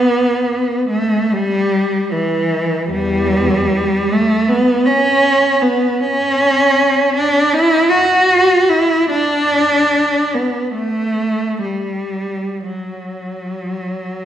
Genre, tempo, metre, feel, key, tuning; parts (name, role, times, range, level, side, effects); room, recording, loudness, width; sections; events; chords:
classical, free, expressive piece for unaccompanied cello; 51-82 BPM; 4/4; rubato; A4 = 440 Hz
rich cello; solo; 0.0-14.2 s; E2 to F#4; -13 LUFS; equal
wet recital hall reverb, RT60 1.6 s; heard from further back in the room, nothing above 10.5 kHz; -13 LUFS; side -10 dB against mid
0.0-14.2 A section